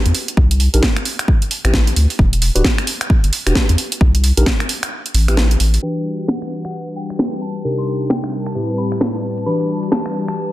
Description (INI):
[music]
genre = UK garage, two-step garage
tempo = 132 BPM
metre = 4/4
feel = swing 61% on 16ths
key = E minor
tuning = A4 = 440 Hz
[part]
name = saturated sub bass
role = bass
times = 0.1-5.8 s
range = D1 to E2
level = -14 LUFS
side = equal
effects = none
[part]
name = house drum kit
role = drums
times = 0.1-10.4 s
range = finger snaps, hi-hat, snare drum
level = -19 LUFS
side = equal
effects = none
[part]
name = electronic kick drum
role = drums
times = 0.4-4.6 s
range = none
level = -15 LUFS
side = equal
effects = none
[part]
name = mellow tine electric piano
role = stabs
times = 0.7-10.5 s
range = A2 to B4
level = -22 LUFS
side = left 1 dB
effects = phaser, tape echo
[part]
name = soft synth bell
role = melody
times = 5.8-10.5 s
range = F#5 to C6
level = -33 LUFS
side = left 2 dB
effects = chorus, phaser, tape echo
[part]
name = warm analog pad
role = sustained chords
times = 5.8-10.5 s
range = G3 to A5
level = -27 LUFS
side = left 3 dB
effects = chorus, sidechain pumping
[sound]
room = light reverb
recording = dense, heavily limited modern master, low-pass filter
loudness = -15 LUFS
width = side -15 dB against mid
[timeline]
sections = 0.0-5.8 A section; 5.8-10.5 B section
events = kick drops out 4.9-5.8; filter sweep 5.8-10.5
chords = 0.4 Cm7; 1.3 Am7; 2.2 Em7; 4.0 Cm7; 4.9 Am7; 5.8 Em7; 7.6 Cm7; 8.6 Am7; 9.5 Em7